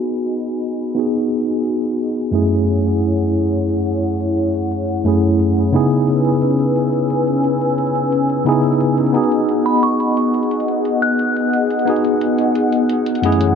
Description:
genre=liquid drum and bass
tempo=176 BPM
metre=4/4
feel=straight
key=G# phrygian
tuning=A4 = 439 Hz
part: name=tine electric piano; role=accompaniment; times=0.0-13.6 s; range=F#2 to G#4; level=-16 LUFS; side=equal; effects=medium stereo tremolo, dub echo
part: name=airy breathy pad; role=sustained chords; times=0.0-13.6 s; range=E3 to E6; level=-20 LUFS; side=left 2 dB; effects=chorus
part: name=electronic hi-hat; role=drums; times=0.1-13.5 s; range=none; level=-42 LUFS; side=right 1 dB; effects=overdrive
part: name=glassy synth bell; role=melody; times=9.7-11.3 s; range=B5 to F#6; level=-21 LUFS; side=right 1 dB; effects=chorus, phaser, analog delay
room=moderate plate reverb, RT60 2.3 s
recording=echo-heavy mix, low-pass filter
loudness=-15 LUFS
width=side -7 dB against mid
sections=0.0-13.6 A section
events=filter sweep on analog synth pad 0.0-13.6; filter sweep 0.0-13.6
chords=0.0 G#m7; 2.3 F#m7; 5.7 C#m7; 9.1 G#m7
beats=0.28 0.62 | 0.96 1.30 1.65 1.99 | 2.33 2.67 3.01 3.35 | 3.69 4.03 4.37 4.71 | 5.05 5.40 5.74 6.08 | 6.42 6.76 7.10 7.44 | 7.78 8.12 8.46 8.80 | 9.15 9.49 9.83 10.17 | 10.51 10.85 11.19 11.53 | 11.87 12.21 12.55 12.90 | 13.24

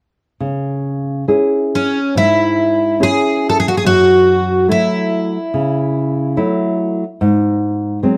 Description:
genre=fado-style ballad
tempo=68-74 BPM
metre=4/4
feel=rubato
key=C# minor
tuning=A4 = 440 Hz
part: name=nylon-string guitar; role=accompaniment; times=0.4-8.2 s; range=F#2 to G#4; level=-18 LUFS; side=equal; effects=none
part: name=picked twelve-string acoustic guitar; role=melody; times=1.8-6.8 s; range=C#4 to A4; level=-16 LUFS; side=equal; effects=none
room=moderate studio reverb, RT60 0.6 s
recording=none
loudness=-15 LUFS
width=mono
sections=0.4-8.2 A section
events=none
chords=0.4 C#m; 3.8 F#m7; 7.2 G#7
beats=| 0.40 1.26 2.14 3.00 | 3.84 4.69 5.54 6.38 | 7.20 8.01

